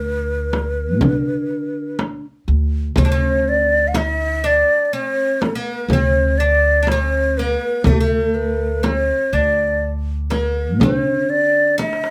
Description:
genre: Arabic maqam ensemble.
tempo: 122 BPM (eighths).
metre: 10/8.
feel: straight.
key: D maqam huzam.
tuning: A4 = 439 Hz.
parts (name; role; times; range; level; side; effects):
breathy mellow ney; melody; 0.0-12.1 s; G4-38c to F5+48c; -21 LUFS; equal; none.
oud; second line; 0.0-12.1 s; A3+40c to E4-50c; -27 LUFS; equal; none.
upright bass; bass; 0.0-12.1 s; D2 to D3; -23 LUFS; equal; none.
darbuka; percussion; 0.1-12.1 s; none; -27 LUFS; equal; none.
frame drum; percussion; 0.5-12.0 s; none; -23 LUFS; equal; none.
room: moderate small room reverb, RT60 0.6 s.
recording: none.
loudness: -18 LUFS.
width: mono.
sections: 0.0-12.1 A section.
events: drum fill 11.8-12.1.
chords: none.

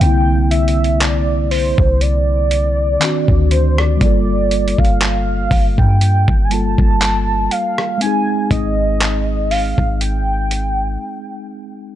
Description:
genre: contemporary R&B.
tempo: 60 BPM.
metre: 4/4.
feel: swing 54% on 16ths.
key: unclear.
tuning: A4 = 439 Hz.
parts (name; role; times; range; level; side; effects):
warm velvety synth lead; melody; 0.0-11.5 s; C5 to A5; -20 LUFS; right 1 dB; chorus, ping-pong delay.
mellow tine electric piano; accompaniment; 0.0-12.0 s; D3 to A4; -21 LUFS; equal; slow stereo tremolo.
clean 808-style bass; bass; 0.0-11.0 s; G1 to G2; -16 LUFS; equal; none.
dusty soul sampler-style drum kit; drums; 0.0-10.8 s; handclaps, hi-hat, kick drum, rim click; -17 LUFS; equal; overdrive.
room: little or no reverb.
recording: dark, warm production, nothing above 10.9 kHz.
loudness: -13 LUFS.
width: side -12 dB against mid.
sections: 0.0-12.0 A section.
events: break 11.0-12.0.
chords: 0.0 C9; 3.0 D7b9; 4.0 Gm9; 8.0 Abmaj7.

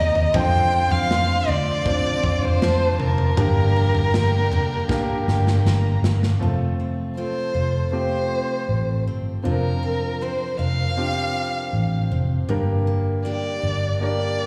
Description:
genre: pop ballad.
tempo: 79 BPM.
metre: 4/4.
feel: straight.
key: unclear.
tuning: A4 = 440 Hz.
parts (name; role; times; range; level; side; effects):
warm violin; melody; 0.0-14.5 s; Bb4 to G5; -26 LUFS; equal; slapback echo.
warm studio violin section; second line; 0.0-6.4 s; F5 to D6; -36 LUFS; equal; slapback echo.
clear concert grand piano; accompaniment; 0.0-14.5 s; G2 to D5; -30 LUFS; equal; slapback echo.
rich studio string section; sustained chords; 0.0-6.4 s; C3 to G4; -36 LUFS; equal; none.
picked steel-string acoustic guitar; arpeggios; 0.0-14.5 s; G2 to Bb4; -34 LUFS; equal; slapback echo.
vintage muted fingered electric bass; bass; 0.0-14.5 s; F1 to F2; -25 LUFS; equal; none.
modern studio drum kit; drums; 0.2-6.4 s; kick drum, snare drum, toms; -28 LUFS; equal; none.
room: light reverb.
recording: live gig heard through the venue's PA, recital hall reverb, studio ambience.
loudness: -21 LUFS.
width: mono.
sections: 0.0-6.4 A section; 6.4-14.5 B section.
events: drum fill 4.9-6.4.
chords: 0.3 Dm7; 3.4 Gm; 6.4 F; 9.5 Bbadd9/F; 12.5 Gm.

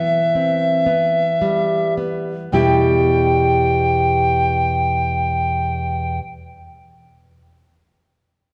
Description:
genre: romantic duo for recorder and classical guitar.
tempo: 34-40 BPM (dotted quarters).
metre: 6/8.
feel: rubato.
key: E minor.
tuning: A4 = 442 Hz.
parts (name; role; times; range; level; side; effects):
alto recorder; melody; 0.0-6.2 s; E5 to G5; -21 LUFS; equal; none.
nylon-string guitar; accompaniment; 0.0-6.2 s; E2 to G4; -21 LUFS; equal; none.
room: wet concert hall reverb, RT60 2.6 s.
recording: dark, warm production.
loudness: -18 LUFS.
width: mono.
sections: 0.0-2.5 A section; 2.5-5.7 B section.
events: slowing down 0.0-2.5.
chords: 0.0 Em.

